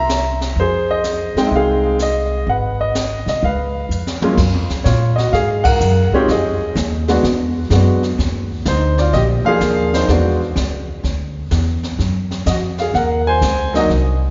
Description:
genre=jazz piano trio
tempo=126 BPM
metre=4/4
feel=swing 67% on 8ths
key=unclear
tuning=A4 = 440 Hz
part: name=clear grand piano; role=melody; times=0.0-13.9 s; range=Gb2 to Bb5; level=-19 LUFS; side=equal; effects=none
part: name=upright bass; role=bass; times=0.0-14.3 s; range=Ab1 to Bb2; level=-20 LUFS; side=equal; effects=none
part: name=jazz brush drum kit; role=drums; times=0.1-14.3 s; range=brushed snare drum, crash cymbal, hi-hat, kick drum, ride cymbal, snare drum, toms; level=-26 LUFS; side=equal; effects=none
room=wet concert hall reverb, RT60 2.2 s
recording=recorded in a church or concert hall, nothing above 7.5 kHz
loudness=-17 LUFS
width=mono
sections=0.0-4.4 A section; 4.4-14.3 B section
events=drum fill 3.9-4.4; band accent 5.6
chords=0.0 C7; 0.6 Fm9; 2.5 Abm; 3.4 Db7; 4.4 Gbmaj9; 6.3 Fm7; 7.2 E9; 8.2 Ebmaj7sus2; 10.1 E7(no3); 12.0 Gb69

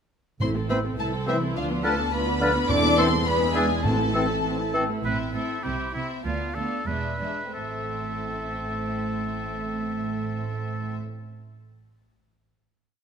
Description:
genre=quick classical-period movement for symphony orchestra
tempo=89-106 BPM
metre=2/4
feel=straight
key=A minor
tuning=A4 = 436 Hz
part: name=dark studio violin section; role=melody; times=0.4-10.9 s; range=E5 to D6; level=-32 LUFS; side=left 4 dB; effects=none
part: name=warm studio violin section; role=second line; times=0.4-10.9 s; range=C4 to D5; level=-32 LUFS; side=left 3 dB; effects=none
part: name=rich studio viola section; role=accompaniment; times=0.4-10.9 s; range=E3 to A4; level=-33 LUFS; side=right 2 dB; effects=none
part: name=dark studio cello section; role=bass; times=0.4-10.9 s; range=D2 to D4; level=-32 LUFS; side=right 3 dB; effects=none
part: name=warm studio double bass section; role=bass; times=0.4-10.9 s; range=E1 to E2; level=-32 LUFS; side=right 4 dB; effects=none
part: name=timpani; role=percussion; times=0.4-4.7 s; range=E2 to A2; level=-31 LUFS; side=equal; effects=none
part: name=clear clarinet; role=second line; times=0.7-4.9 s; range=C4 to D4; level=-35 LUFS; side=left 2 dB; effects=none
part: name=clear oboe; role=second line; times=0.7-10.9 s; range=E4 to C5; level=-33 LUFS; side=equal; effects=none
part: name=mellow hollow wooden flute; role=second line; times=0.7-4.9 s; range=E6 to F6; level=-33 LUFS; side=left 3 dB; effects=none
part: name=mellow bassoon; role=accompaniment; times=0.7-4.8 s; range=D3 to E3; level=-33 LUFS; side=right 2 dB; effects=none
part: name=mellow French horn section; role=sustained chords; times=0.7-4.7 s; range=E3 to E4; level=-33 LUFS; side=left 4 dB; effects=none
part: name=mellow trumpet section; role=stabs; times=0.7-4.7 s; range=G#4 to C5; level=-33 LUFS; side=right 2 dB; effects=none
room=moderate scoring stage reverb, RT60 1.9 s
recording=none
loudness=-23 LUFS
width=side -7 dB against mid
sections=0.4-5.0 A section; 5.0-7.5 coda; 7.5-10.2 final chord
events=slowing down 4.4-7.5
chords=0.4 Am; 1.0 Am/C; 1.6 Bdim/D; 2.7 Am/E; 3.3 E7; 3.9 Am; 5.6 C; 6.2 Bdim/D; 6.9 E7; 7.5 Am

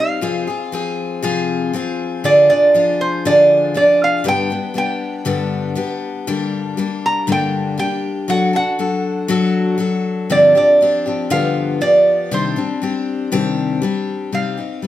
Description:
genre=acoustic folk duo or small band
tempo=119 BPM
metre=4/4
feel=straight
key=unclear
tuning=A4 = 439 Hz
part: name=lap resonator guitar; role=melody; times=0.0-14.9 s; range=C5 to Bb5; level=-14 LUFS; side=right 2 dB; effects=none
part: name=picked steel-string acoustic guitar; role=accompaniment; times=0.0-14.9 s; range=G2 to A4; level=-19 LUFS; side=left 4 dB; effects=none
room=light reverb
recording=none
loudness=-14 LUFS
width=side -13 dB against mid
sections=0.0-14.3 A section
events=none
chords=0.2 Fm/C; 2.2 Ddim; 4.3 G; 6.3 Gm; 8.3 D/F#; 10.3 G7sus4; 11.3 G7; 12.3 Cmadd9; 14.3 Cm

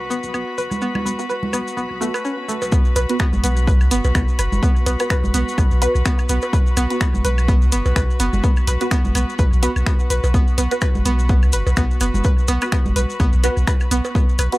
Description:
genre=minimal techno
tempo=126 BPM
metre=4/4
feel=swing 56% on 16ths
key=unclear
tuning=A4 = 439 Hz
part: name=punchy sub bass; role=bass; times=0.0-14.5 s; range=F#1 to C#2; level=-20 LUFS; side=equal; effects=tube saturation, sidechain pumping, high-pass filter
part: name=warm chamber string section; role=texture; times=0.0-14.6 s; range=F#4 to B5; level=-28 LUFS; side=left 1 dB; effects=sidechain pumping
part: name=string-like resonator pluck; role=riff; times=0.1-14.4 s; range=A3 to B4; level=-25 LUFS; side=right 1 dB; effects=chorus, sidechain pumping, tape echo
part: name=maracas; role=percussion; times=0.1-14.6 s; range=none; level=-30 LUFS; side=left 3 dB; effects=none
part: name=woodblock, congas and cowbell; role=percussion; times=0.3-14.5 s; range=none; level=-27 LUFS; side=right 2 dB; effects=overdrive, analog delay
part: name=filtered dub chord stab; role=stabs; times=1.2-14.6 s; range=B3 to B4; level=-25 LUFS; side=right 1 dB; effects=phaser, ensemble chorus, analog delay
part: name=electronic kick drum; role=drums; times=2.7-14.3 s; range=none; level=-17 LUFS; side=equal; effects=none
part: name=garage drum kit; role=drums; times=3.0-14.6 s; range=finger snaps, hi-hat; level=-24 LUFS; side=equal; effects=none
room=little or no reverb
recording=dry, gritty hardware recording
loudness=-16 LUFS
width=side -19 dB against mid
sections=0.0-2.7 A section; 2.7-14.6 B section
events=drop 2.7-14.6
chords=0.0 B5

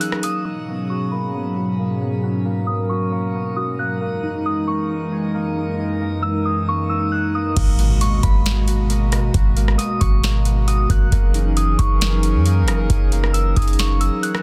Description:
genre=hip hop, atmospheric cloud-rap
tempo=135 BPM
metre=4/4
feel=half-time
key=G# minor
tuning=A4 = 439 Hz
part: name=soft synth bell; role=melody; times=0.0-14.4 s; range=B5 to F#6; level=-29 LUFS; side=equal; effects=chorus, phaser, low-pass filter, delay
part: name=hollow soft pad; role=sustained chords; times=0.0-14.4 s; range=F#2 to A#4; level=-26 LUFS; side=equal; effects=chorus, sidechain pumping, low-pass filter
part: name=concert harp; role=arpeggios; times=0.0-14.4 s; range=A#3 to G#4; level=-31 LUFS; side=equal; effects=low-pass filter, delay
part: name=booming analog drum machine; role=drums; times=0.0-0.3, 7.6-14.4 s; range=crash cymbal, hi-hat, kick drum, rim click, snare drum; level=-24 LUFS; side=equal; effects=soft clipping on snare
part: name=warm 808-style bass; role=bass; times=7.6-14.1 s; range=F#1 to F#2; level=-20 LUFS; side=equal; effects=none
part: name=impact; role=sound effects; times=7.8-9.3 s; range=none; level=-32 LUFS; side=equal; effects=none
room=digital ambience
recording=dense, heavily limited modern master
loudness=-19 LUFS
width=mono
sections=0.5-7.6 A section; 7.6-14.4 B section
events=break 0.0-0.5; impact 7.6-9.3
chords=0.5 G#m11; 4.0 F#13; 7.6 G#m11; 11.1 F#13

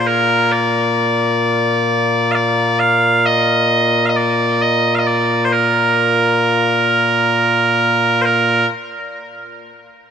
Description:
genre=scottish traditional, Scottish pipe music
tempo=free time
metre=none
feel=none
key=Bb major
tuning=A4 = 440 Hz
part: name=loud bright bagpipes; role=solo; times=0.0-8.7 s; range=Bb2 to F5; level=-13 LUFS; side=equal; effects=none
room=moderate huge ambient reverb, RT60 4.9 s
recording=none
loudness=-13 LUFS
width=side -8 dB against mid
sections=0.0-8.2 A section; 8.2-10.1 B section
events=none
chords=none

